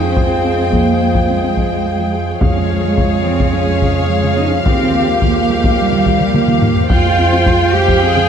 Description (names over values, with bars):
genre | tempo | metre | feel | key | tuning
cinematic, hybrid orchestral and electronic film score | 107 BPM | 4/4 | straight | F minor | A4 = 441 Hz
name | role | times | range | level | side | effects
rich studio violin section | melody | 0.0-8.3 s | F5 to G5 | -24 LUFS | left 5 dB | none
rich chamber violin section | second line | 0.0-8.3 s | C5 to F5 | -24 LUFS | left 2 dB | none
clear studio viola section | accompaniment | 0.0-8.3 s | G4 to G5 | -22 LUFS | equal | none
clear trombone section | sustained chords | 0.0-8.3 s | F3 to Ab3 | -23 LUFS | right 2 dB | none
dark French horn section | sustained chords | 0.0-8.3 s | Bb4 to F5 | -21 LUFS | left 3 dB | none
dark symphonic cello section | bass | 0.0-8.3 s | G3 to Ab4 | -18 LUFS | right 2 dB | none
rich studio double bass section | bass | 0.0-8.3 s | Eb2 to F2 | -19 LUFS | right 3 dB | none
soft round pluck | arpeggios | 0.2-8.2 s | Db3 to F4 | -23 LUFS | equal | chorus
solo taiko drums | drums | 0.2-8.3 s | none | -18 LUFS | left 1 dB | none
room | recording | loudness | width
wet scoring stage reverb, RT60 1.8 s | dark, warm production | -11 LUFS | side -8 dB against mid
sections
0.0-8.3 A section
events
drum fill 6.3-6.9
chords
0.0 Fmadd9; 2.4 Db/F; 4.7 Ebadd9; 6.9 Fmadd9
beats
| 0.17 0.73 1.29 1.85 | 2.42 2.98 3.54 4.10 | 4.66 5.22 5.78 6.34 | 6.90 7.46 8.02